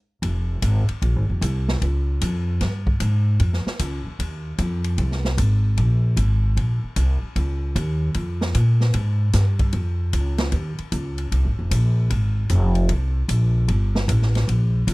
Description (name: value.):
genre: jazz, small-group swing and bop.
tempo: 152 BPM.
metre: 4/4.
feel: swing 66% on 8ths.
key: F minor.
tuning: A4 = 440 Hz.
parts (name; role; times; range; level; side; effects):
upright bass; bass; 0.2-14.9 s; F1 to Bb2; -19 LUFS; equal; none.
open jazz drum kit; drums; 0.2-14.9 s; hi-hat, kick drum, ride cymbal, snare drum; -28 LUFS; equal; none.
room: little or no reverb.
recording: dry, close 1970s-style studio recording.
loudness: -19 LUFS.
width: side -22 dB against mid.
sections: 0.2-14.9 A section.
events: none.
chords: none.